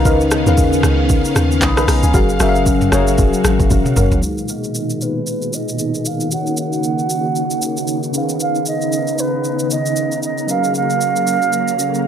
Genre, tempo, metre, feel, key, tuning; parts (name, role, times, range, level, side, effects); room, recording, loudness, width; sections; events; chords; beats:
amapiano; 115 BPM; 4/4; swing 58% on 16ths; G# dorian; A4 = 443 Hz
bell-like tine electric piano; accompaniment; 0.0-12.1 s; C#3 to D#6; -20 LUFS; left 3 dB; analog chorus, low-pass filter
string machine, violas; sustained chords; 0.0-12.1 s; A#2 to A#5; -21 LUFS; equal; ensemble chorus, sidechain pumping, low-pass filter
deep log drum bass; bass; 0.0-4.2 s; E#1 to D#2; -17 LUFS; equal
deep mellow chord stab; stabs; 0.1-4.1 s; F#4 to E#5; -25 LUFS; left 1 dB; chorus, tape echo
smooth R&B drum kit; drums; 0.1-12.0 s; handclaps, hi-hat, kick drum, rim click, shaker, toms; -19 LUFS; equal
mellow silver concert flute; melody; 4.2-12.1 s; B4 to F#5; -21 LUFS; right 6 dB; low-pass filter, tape echo
little or no reverb; dry, gritty hardware recording; -14 LUFS; side -9 dB against mid
0.0-4.2 A section; 4.2-12.1 B section
drop 0.0-4.2; drum fill 3.7-4.2; filter sweep 4.2-12.1
0.0 C#13; 2.1 F#maj7; 4.2 G#m69; 6.3 D#m7; 8.1 C#13; 10.5 F#maj7
| 0.05 0.57 1.10 1.62 | 2.14 2.66 3.18 3.71 | 4.23 4.75 5.27 5.79 | 6.31 6.83 7.36 7.88 | 8.40 8.92 9.44 9.97 | 10.49 11.01 11.53 12.05